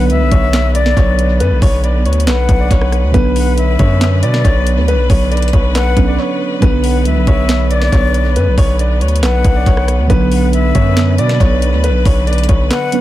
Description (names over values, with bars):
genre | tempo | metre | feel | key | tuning
hip hop, trap | 138 BPM | 4/4 | half-time | B minor | A4 = 440 Hz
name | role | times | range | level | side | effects
dark baby grand piano | melody | 0.0-13.0 s | B4 to D5 | -20 LUFS | left 1 dB | low-pass filter, tape echo
breathy silver concert flute | second line | 0.0-13.0 s | D5 to F#5 | -22 LUFS | left 6 dB | tape echo
muted felt-like synth keys | accompaniment | 0.0-13.0 s | D3 to B4 | -20 LUFS | right 5 dB | chorus, low-pass filter
clear symphonic string section | sustained chords | 0.0-13.0 s | D3 to B4 | -24 LUFS | left 2 dB | none
distorted 808-style bass | bass | 0.0-12.7 s | B1 to B2 | -13 LUFS | equal | distortion
trap drum kit | drums | 0.1-13.0 s | handclaps, hi-hat, kick drum, rim click, snare drum | -16 LUFS | equal | none
room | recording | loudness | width
small room ambience | echo-heavy mix | -10 LUFS | side -14 dB against mid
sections
0.0-13.0 A section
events
break 6.2-6.6, 12.7-13.0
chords
0.0 Bmadd9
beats
0.10 0.53 0.97 | 1.40 1.84 2.27 2.71 | 3.14 3.58 4.01 4.45 | 4.88 5.32 5.75 6.18 | 6.62 7.05 7.49 7.92 | 8.36 8.79 9.23 9.66 | 10.10 10.53 10.97 11.40 | 11.84 12.27 12.71